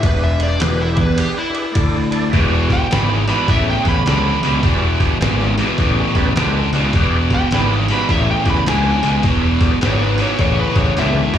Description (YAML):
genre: blues rock power trio and southern rock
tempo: 104 BPM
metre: 4/4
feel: swing 64% on 8ths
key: E mixolydian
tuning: A4 = 440 Hz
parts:
  - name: overdriven slide guitar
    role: melody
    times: 0.0-11.4 s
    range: E4 to B5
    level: -22 LUFS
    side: equal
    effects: slapback echo, plate reverb
  - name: overdriven tonewheel organ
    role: sustained chords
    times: 0.0-11.4 s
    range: A3 to D5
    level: -26 LUFS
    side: right 2 dB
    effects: slow rotary speaker, chorus vibrato, plate reverb
  - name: fuzz picked electric bass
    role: bass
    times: 0.0-11.4 s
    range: E1 to E2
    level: -18 LUFS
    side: equal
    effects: overdrive
  - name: trip hop sampler-style drum kit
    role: drums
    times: 0.0-11.4 s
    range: hi-hat, kick drum, ride cymbal, snare drum, toms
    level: -20 LUFS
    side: equal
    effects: none
  - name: distorted electric guitar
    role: riff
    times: 2.3-11.4 s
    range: E2 to D3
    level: -18 LUFS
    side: equal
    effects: overdrive
room: light reverb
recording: live gig heard through the venue's PA, club reverb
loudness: -14 LUFS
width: side -10 dB against mid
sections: 0.0-2.3 A section; 2.3-11.4 B section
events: electric slide guitar solo 0.0-2.3; kick and snare drop out 1.8-2.3; drum fill 11.0-11.4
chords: 0.0 E7#9; 1.8 D5; 2.3 E7#9